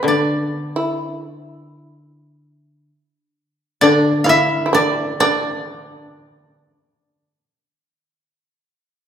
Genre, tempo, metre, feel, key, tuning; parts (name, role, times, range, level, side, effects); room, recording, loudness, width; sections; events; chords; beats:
japanese traditional, Japanese chamber music; free time; A4 = 442 Hz
koto; melody; 0.0-9.1 s; A4 to F5; -18 LUFS; right 1 dB
shamisen; second line; 0.0-9.1 s; D4 to E4; -21 LUFS; right 1 dB
koto; accompaniment; 0.0-6.6 s; D3; -19 LUFS; left 2 dB
wet recital hall reverb, RT60 1.7 s; recorded in a church or concert hall; -15 LUFS; side -8 dB against mid
0.0-9.1 A section
free time